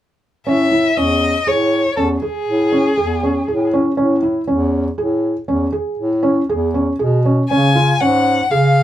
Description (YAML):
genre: contemporary instrumental, contemporary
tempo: 120 BPM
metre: 7/4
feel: straight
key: A lydian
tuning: A4 = 440 Hz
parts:
  - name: rich violin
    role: melody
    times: 0.5-8.8 s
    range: G#4 to G#5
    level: -17 LUFS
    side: left 3 dB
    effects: none
  - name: felt-muted upright piano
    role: arpeggios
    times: 0.5-8.8 s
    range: C#4 to G#4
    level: -18 LUFS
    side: right 2 dB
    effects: none
  - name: warm bass clarinet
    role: bass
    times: 0.5-8.8 s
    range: E2 to C#3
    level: -18 LUFS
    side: equal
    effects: none
room: wet booth ambience, RT60 0.2 s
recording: heard from further back in the room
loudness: -14 LUFS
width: side -12 dB against mid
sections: 0.5-8.8 A section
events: none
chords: 0.5 Amaj7; 7.5 C#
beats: | 0.47 0.97 1.47 1.98 2.48 2.98 3.48 | 3.98 4.49 4.99 5.49 5.99 6.49 7.00 | 7.50 8.00 8.50